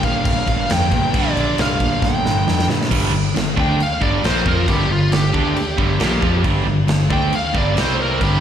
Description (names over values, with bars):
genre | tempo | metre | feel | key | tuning
hard rock | 136 BPM | 4/4 | straight | G minor | A4 = 440 Hz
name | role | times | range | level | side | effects
bluesy overdriven lead guitar | melody | 0.0-8.4 s | F4 to G5 | -22 LUFS | equal | distortion, slapback echo
crunchy overdriven guitar | riff | 0.0-8.4 s | G2 to F4 | -23 LUFS | left 8 dB | slapback echo
crunchy overdriven guitar | riff | 0.0-8.4 s | G2 to F4 | -22 LUFS | right 10 dB | tremolo, slapback echo
overdriven fingered electric bass | bass | 0.0-8.4 s | G1 to Bb2 | -21 LUFS | equal | none
big rock drum kit | drums | 0.0-8.3 s | crash cymbal, kick drum, snare drum | -21 LUFS | equal | none
room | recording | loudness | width
little or no reverb | live gig heard through the venue's PA, recital hall reverb | -15 LUFS | side -9 dB against mid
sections
0.0-2.9 A section; 2.9-8.4 B section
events
drum fill 2.0-2.9; lead electric guitar solo 2.9-8.4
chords
0.0 Gm; 7.8 C5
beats
0.25 0.69 | 1.14 1.58 2.02 2.46 | 2.91 3.35 3.79 4.23 | 4.68 5.12 5.56 6.00 | 6.44 6.89 7.33 7.77 | 8.21